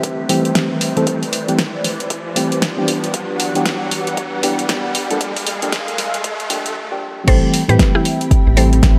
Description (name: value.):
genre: deep house.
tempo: 116 BPM.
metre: 4/4.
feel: swing 61% on 16ths.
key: A minor.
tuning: A4 = 437 Hz.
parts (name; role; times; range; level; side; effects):
hollow soft pad; sustained chords; 0.0-9.0 s; E3 to B5; -28 LUFS; equal; ensemble chorus, sidechain pumping.
mellow FM electric piano; stabs; 0.0-9.0 s; E3 to A4; -22 LUFS; equal; chorus, cassette tape, sidechain pumping, delay.
deep house drum kit; drums; 0.0-9.0 s; crash cymbal, hi-hat, snare drum; -23 LUFS; equal; none.
electronic kick drum; drums; 0.0-9.0 s; none; -17 LUFS; equal; high-pass filter on kick, high-pass filter on room.
riser; sound effects; 0.0-6.8 s; none; -29 LUFS; equal; none.
mallet-like synth pluck; melody; 7.3-8.9 s; E4 to C5; -23 LUFS; equal; chorus, tape echo.
round analog bass; bass; 7.3-9.0 s; A1 to A2; -16 LUFS; equal; sidechain pumping.
room: moderate lush hall reverb, RT60 2.3 s.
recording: high-pass filter.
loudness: -17 LUFS.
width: mono.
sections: 0.0-7.3 A section; 7.3-9.0 B section.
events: build-up 0.0-7.3; riser 0.0-6.8; filter sweep on FM electric piano 0.0-7.3; filter sweep on analog synth pad 0.0-7.3; filter sweep 0.0-7.3; break 6.8-7.3; drop 7.3-9.0.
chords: 0.0 Am7; 2.9 Em7; 5.2 Gm7; 7.3 Am7.